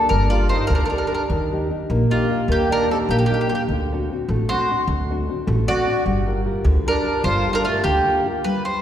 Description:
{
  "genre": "italian folk, Italian serenade",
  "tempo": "101 BPM (dotted quarters)",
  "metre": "6/8",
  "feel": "straight",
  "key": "G minor",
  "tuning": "A4 = 440 Hz",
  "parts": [
    { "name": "mandolin", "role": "melody", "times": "0.0-8.8 s", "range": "F4 to D5", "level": "-22 LUFS", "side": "equal", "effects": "none" },
    { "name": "accordion", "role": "second line", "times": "0.0-8.3 s", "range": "A3 to F#4", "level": "-27 LUFS", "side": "right 2 dB", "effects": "light tremolo tuning" },
    { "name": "nylon-string guitar", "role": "accompaniment", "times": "0.0-8.8 s", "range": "D3 to B4", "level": "-24 LUFS", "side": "left 1 dB", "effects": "none" },
    { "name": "upright bass", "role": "bass", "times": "0.1-8.0 s", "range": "G1 to Eb2", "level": "-22 LUFS", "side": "equal", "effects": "none" }
  ],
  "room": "wet concert hall reverb, RT60 2.2 s",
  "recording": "recorded in a church or concert hall",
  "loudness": "-18 LUFS",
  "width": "side -10 dB against mid",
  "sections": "0.0-8.5 A section",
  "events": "none",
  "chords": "0.0 Gmadd9; 1.3 Ebmaj7; 3.7 D7; 6.1 Gm7",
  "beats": "| 0.12 0.71 | 1.30 1.90 | 2.49 3.09 | 3.69 4.29 | 4.88 5.48 | 6.07 6.66 | 7.25 7.86 | 8.46"
}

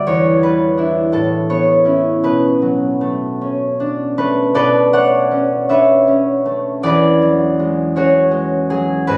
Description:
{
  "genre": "classical, solo harp piece",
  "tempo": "51-57 BPM (dotted quarters)",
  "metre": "6/8",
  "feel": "rubato",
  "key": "unclear",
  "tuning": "A4 = 439 Hz",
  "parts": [
    { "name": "concert harp", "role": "solo", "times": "0.0-9.2 s", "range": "E2 to F#5", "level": "-15 LUFS", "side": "equal", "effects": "none" }
  ],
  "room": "moderate recital hall reverb, RT60 1.5 s",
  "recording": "recorded on a phone in the room, studio reverb, compression",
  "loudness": "-15 LUFS",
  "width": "mono",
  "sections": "0.0-4.6 A section; 4.6-9.2 B section",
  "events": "none",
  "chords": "0.1 Em7; 1.1 Aadd9; 2.2 Bm9; 6.8 E13",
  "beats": "| 0.06 1.13 | 2.25 3.42 | 4.58 5.72 | 6.84 7.97 | 9.08"
}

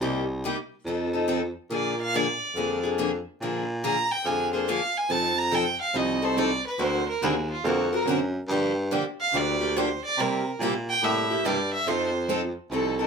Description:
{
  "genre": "acoustic string swing (jazz manouche)",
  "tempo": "142 BPM",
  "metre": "4/4",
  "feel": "swing 64% on 8ths",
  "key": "F mixolydian",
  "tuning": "A4 = 438 Hz",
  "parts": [
    { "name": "picked steel-string acoustic guitar", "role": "accompaniment", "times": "0.0-13.1 s", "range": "C3 to A#4", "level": "-29 LUFS", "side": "left 3 dB", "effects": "none" },
    { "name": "growling baritone saxophone", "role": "bass", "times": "0.0-13.1 s", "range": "C2 to C3", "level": "-28 LUFS", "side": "equal", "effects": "none" },
    { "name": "warm violin", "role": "melody", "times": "1.7-13.1 s", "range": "E#4 to Bb5", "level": "-27 LUFS", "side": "right 2 dB", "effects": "none" },
    { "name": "picked steel-string acoustic guitar", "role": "accompaniment", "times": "5.1-12.9 s", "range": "C3 to A#4", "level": "-32 LUFS", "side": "right 6 dB", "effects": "none" }
  ],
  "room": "moderate studio reverb, RT60 0.6 s",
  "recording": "minimal, uncompressed stereo recording",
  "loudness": "-24 LUFS",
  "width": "side -5 dB against mid",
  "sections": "0.0-13.1 A section",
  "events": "violin solo 0.0-13.1",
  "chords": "0.0 Cm7; 0.9 F7; 1.7 Bb7; 5.1 F7; 6.8 D7alt; 8.5 Gm7; 10.2 C7; 11.9 F7",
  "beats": "| 0.01 0.44 0.86 1.29 | 1.71 2.13 2.56 2.98 | 3.41 3.83 4.25 4.68 | 5.10 5.53 5.95 6.37 | 6.80 7.22 7.64 8.07 | 8.49 8.91 9.34 9.76 | 10.18 10.60 11.03 11.45 | 11.87 12.29 12.72"
}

